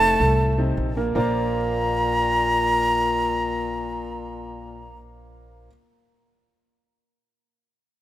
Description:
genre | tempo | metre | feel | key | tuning
jazz | 157 BPM | 4/4 | straight | Bb major | A4 = 442 Hz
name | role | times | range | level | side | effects
breathy bright jazz flute | melody | 0.0-5.0 s | A5 to Bb5 | -22 LUFS | right 1 dB | none
warm baritone saxophone | second line | 0.0-5.0 s | Bb2 to A3 | -27 LUFS | left 4 dB | none
clear grand piano | accompaniment | 0.0-5.7 s | A2 to D5 | -28 LUFS | right 2 dB | none
upright bass | bass | 0.0-5.7 s | F1 to C2 | -28 LUFS | equal | none
room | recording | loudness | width
light reverb, small room ambience | rough home demo mix | -20 LUFS | side -13 dB against mid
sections
0.0-1.2 A section; 1.2-4.2 B section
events
none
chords
0.0 F7; 1.2 Bbadd9

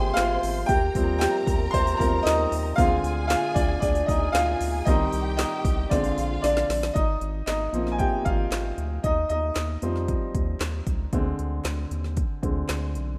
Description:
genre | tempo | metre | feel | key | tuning
piano-driven pop | 115 BPM | 4/4 | straight | Eb major | A4 = 440 Hz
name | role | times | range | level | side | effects
warm symphonic violin section | second line | 0.0-6.9 s | F4 to C6 | -36 LUFS | equal | none
bright upright piano | accompaniment | 0.0-13.2 s | D3 to C6 | -28 LUFS | equal | none
round analog bass | bass | 0.0-13.2 s | Ab1 to F2 | -31 LUFS | equal | none
deep house drum kit | drums | 0.2-13.1 s | handclaps, hi-hat, kick drum, snare drum | -30 LUFS | equal | none
room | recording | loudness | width
light reverb, small room reverb | rough home demo mix | -25 LUFS | mono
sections
0.0-7.0 A section; 7.0-13.2 B section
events
upright piano solo 0.0-7.0, 7.0-13.2; drum fill 5.9-7.0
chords
0.0 Ab6; 0.7 Eb6; 2.8 Dm7b5; 4.9 Cm; 5.9 Bb7; 7.0 Ab6; 9.0 Eb6; 11.1 Bm6 (rootless)

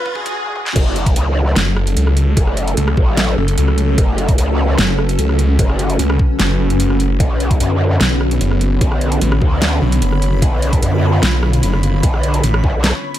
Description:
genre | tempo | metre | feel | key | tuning
heavy wobble dubstep | 149 BPM | 4/4 | half-time | F# harmonic minor | A4 = 440 Hz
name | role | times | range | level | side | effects
soft supersaw | melody | 0.0-0.7 s | G#4 | -24 LUFS | equal | vintage 12-bit sampler grit, tape echo
lush unison pad | sustained chords | 0.0-13.2 s | C#3 to B4 | -24 LUFS | equal | chorus, sidechain pumping
granular cloud pad | texture | 0.3-13.2 s | D3 to B5 | -23 LUFS | equal | built-in reverb, sidechain pumping
electronic kick drum | drums | 0.1-12.7 s | none | -15 LUFS | equal | none
dubstep drum kit | drums | 0.3-13.2 s | crash cymbal, hi-hat, rim click, snare drum, toms | -20 LUFS | equal | high-pass filter on hats, high-pass filter on snare, high-pass filter on toms, high-pass filter on cymbals
growl bass | bass | 0.8-12.9 s | F#1 to F#2 | -16 LUFS | equal | chorus, overdrive
snarling distorted saw bass | bass | 1.6-12.6 s | F#1 to C#2 | -15 LUFS | equal | distortion, overdrive
room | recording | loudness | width
digital ambience | high-pass filter | -13 LUFS | side -12 dB against mid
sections
0.8-13.2 A section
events
drum fill 0.0-0.4, 0.5-0.8; drop 0.8-13.2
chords
0.0 Bm; 0.8 F#m; 7.2 Bmadd9

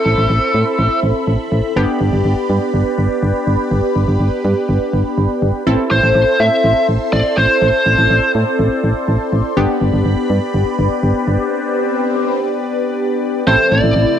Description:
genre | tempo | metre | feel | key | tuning
synth-pop | 123 BPM | 4/4 | straight | A minor | A4 = 443 Hz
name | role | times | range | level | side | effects
biting lead guitar | melody | 0.0-1.0, 5.9-8.3, 13.5-14.2 s | A4 to E5 | -15 LUFS | equal | overdrive, tape echo
funky polysynth comp | accompaniment | 0.0-14.2 s | B3 to A4 | -20 LUFS | left 1 dB | chorus
phased analog pad | sustained chords | 0.0-14.2 s | C3 to C6 | -20 LUFS | equal | phaser, chorus
downlifter and swell | sound effects | 0.0-1.8, 11.2-12.5 s | none | -30 LUFS | left 1 dB | none
solid FM bass | bass | 0.1-14.1 s | G1 to A2 | -15 LUFS | equal | none
room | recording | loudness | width
light reverb, digital ambience | dark, warm production | -13 LUFS | side -9 dB against mid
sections
0.0-13.5 A section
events
swell 11.2-13.5; break 11.5-13.5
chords
0.0 Am; 1.8 G; 5.7 Am; 9.6 G; 13.5 Am

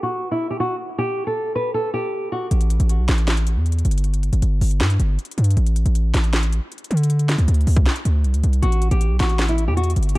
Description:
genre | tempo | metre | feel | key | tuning
hip hop, trap | 157 BPM | 4/4 | half-time | A dorian | A4 = 439 Hz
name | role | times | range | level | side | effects
nylon-string guitar | melody | 0.0-2.5, 8.6-10.2 s | E4 to B4 | -23 LUFS | equal | low-pass filter, tape echo
hard-hitting 808-style bass | bass | 2.5-10.2 s | G1 to D3 | -17 LUFS | equal | none
trap drum kit | drums | 2.5-10.2 s | handclaps, hi-hat, kick drum, snare drum | -24 LUFS | equal | none
room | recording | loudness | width
little or no reverb | dark, warm production | -17 LUFS | side -19 dB against mid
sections
0.0-2.5 A section; 2.5-10.2 B section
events
filter sweep on nylon-string guitar 0.0-2.5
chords
0.0 N.C.; 2.5 A5; 4.0 N.C.; 5.6 Asus4; 7.1 Csus2; 8.6 A5

